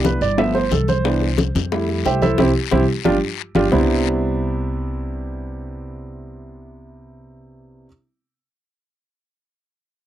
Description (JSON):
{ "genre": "Afro-Cuban jazz", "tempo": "180 BPM", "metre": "4/4", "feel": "straight", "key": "C major", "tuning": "A4 = 440 Hz", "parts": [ { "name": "warm baby grand piano", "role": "accompaniment", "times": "0.0-7.9 s", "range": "C3 to G5", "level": "-20 LUFS", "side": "right 2 dB", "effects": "none" }, { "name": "upright bass", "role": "bass", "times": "0.0-7.9 s", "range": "G1 to F2", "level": "-23 LUFS", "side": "equal", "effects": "none" }, { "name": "bongos", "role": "percussion", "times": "0.0-3.8 s", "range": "none", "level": "-26 LUFS", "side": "left 8 dB", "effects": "none" }, { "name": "congas", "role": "percussion", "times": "0.0-3.8 s", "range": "none", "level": "-23 LUFS", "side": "left 2 dB", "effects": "none" }, { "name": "guiro", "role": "percussion", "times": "0.0-3.8 s", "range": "none", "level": "-31 LUFS", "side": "left 18 dB", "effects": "none" } ], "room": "little or no reverb", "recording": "dry, close 1970s-style studio recording", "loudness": "-17 LUFS", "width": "side -12 dB against mid", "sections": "0.0-3.7 A section; 3.7-6.4 B section", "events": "grand piano solo 0.0-3.7; band accent 2.4-3.7; drum fill 2.9-3.7", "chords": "0.4 G7; 1.0 Cmaj9; 1.7 Fmaj9; 2.4 C; 3.1 G5; 3.7 Cmaj9", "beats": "0.05 0.38 0.72 | 1.05 1.38 1.72 2.05 | 2.38 2.72 3.05 3.39 | 3.72 4.06 4.39 4.72 | 5.06 5.39 5.73 6.06" }